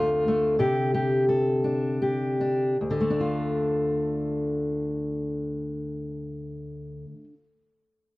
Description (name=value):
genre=folk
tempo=72-96 BPM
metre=3/4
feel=straight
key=D minor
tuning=A4 = 440 Hz
part: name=fingerpicked steel-string acoustic guitar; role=accompaniment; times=0.0-7.4 s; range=D2 to A4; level=-24 LUFS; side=left 1 dB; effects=none
room=moderate studio reverb, RT60 0.9 s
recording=worn, warbling old tape, cassette tape, warbly pitch drift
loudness=-24 LUFS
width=side -20 dB against mid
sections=0.0-2.8 A section; 2.8-7.8 B section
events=slowing down 0.0-2.8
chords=0.0 Dm; 0.6 Csus2; 2.8 Dm